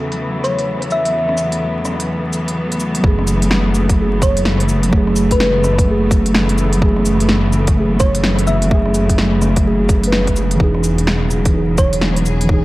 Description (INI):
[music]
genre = future garage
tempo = 127 BPM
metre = 4/4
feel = swing 63% on 16ths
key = F# dorian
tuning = A4 = 439 Hz
[part]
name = muted felt-like synth keys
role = accompaniment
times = 0.0-12.6 s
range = E2 to B4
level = -20 LUFS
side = right 1 dB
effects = chorus, sidechain pumping, tape echo
[part]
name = rich studio string section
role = sustained chords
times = 0.0-12.6 s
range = E2 to G#4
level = -21 LUFS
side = left 1 dB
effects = sidechain pumping
[part]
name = garage drum kit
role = drums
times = 0.1-12.5 s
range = cabasa, hi-hat, rim click, snare drum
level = -21 LUFS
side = equal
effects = none
[part]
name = thumb-piano-like synth pluck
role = melody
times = 0.4-1.4, 4.2-8.9, 11.8-12.0 s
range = B4 to E5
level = -20 LUFS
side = equal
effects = chorus, analog delay
[part]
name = dark detuned saw bass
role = bass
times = 3.0-12.6 s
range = E1 to F#1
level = -18 LUFS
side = equal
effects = sidechain pumping
[part]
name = electronic kick drum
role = drums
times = 3.0-12.6 s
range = none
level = -16 LUFS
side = equal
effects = overdrive
[sound]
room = moderate spring reverb, RT60 2.2 s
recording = echo-heavy mix, vinyl crackle, low-pass filter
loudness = -13 LUFS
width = side -18 dB against mid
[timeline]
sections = 0.0-3.0 A section; 3.0-12.6 B section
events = filter sweep on synth keys 0.0-3.0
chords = 0.0 Aadd9/E; 3.0 F#madd9; 10.6 Emaj7